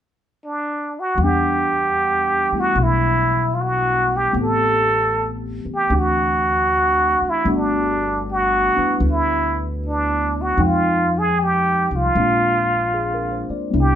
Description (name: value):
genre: jazz ballad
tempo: 76 BPM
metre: 4/4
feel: swing 69% on 8ths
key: E minor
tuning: A4 = 440 Hz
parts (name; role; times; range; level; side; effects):
- trumpet with plunger mute; melody; 0.4-14.0 s; D4 to A4; -18 LUFS; right 1 dB; none
- tine electric piano; accompaniment; 1.2-14.0 s; E3 to G5; -24 LUFS; left 1 dB; overdrive, phaser
- upright bass; bass; 1.2-14.0 s; G1 to F2; -24 LUFS; left 1 dB; none
room: moderate studio reverb, RT60 0.7 s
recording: band playing live in one room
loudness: -16 LUFS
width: side -10 dB against mid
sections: 0.0-1.2 A section; 1.2-14.0 B section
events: none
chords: 0.0 N.C.; 1.2 Em9; 4.3 Am9; 5.9 D9; 7.4 Gmaj7; 10.6 Fm7; 12.1 A#9